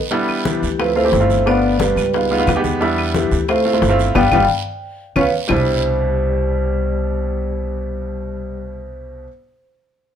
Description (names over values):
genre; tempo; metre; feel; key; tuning
Afro-Cuban jazz; 179 BPM; 4/4; straight; C major; A4 = 440 Hz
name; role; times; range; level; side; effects
clear upright piano; accompaniment; 0.1-9.3 s; B2 to G4; -22 LUFS; right 2 dB; none
bongos; percussion; 0.1-5.6 s; none; -26 LUFS; left 7 dB; none
congas; percussion; 0.1-5.6 s; none; -26 LUFS; left 1 dB; none
guiro; percussion; 0.1-5.6 s; none; -31 LUFS; right 8 dB; none
claves; percussion; 0.3-5.6 s; none; -28 LUFS; left 1 dB; none
vibraphone with medium mallets; melody; 0.5-9.3 s; G4 to G5; -20 LUFS; right 1 dB; plate reverb
breathy trombone; second line; 0.5-8.9 s; E3 to Db4; -24 LUFS; left 5 dB; none
upright bass; bass; 0.6-9.3 s; G1 to E2; -22 LUFS; equal; none
room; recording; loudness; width
moderate studio reverb, RT60 0.7 s; none; -15 LUFS; side -9 dB against mid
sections
0.1-5.5 A section; 5.5-8.2 B section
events
band accent 4.2-5.5; drum fill 5.0-5.5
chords
0.1 Em7; 0.8 Dm9; 1.5 G7; 2.1 Db9; 2.8 Em7; 3.5 Dm9; 4.2 G7; 4.8 Db7; 5.5 Cmaj9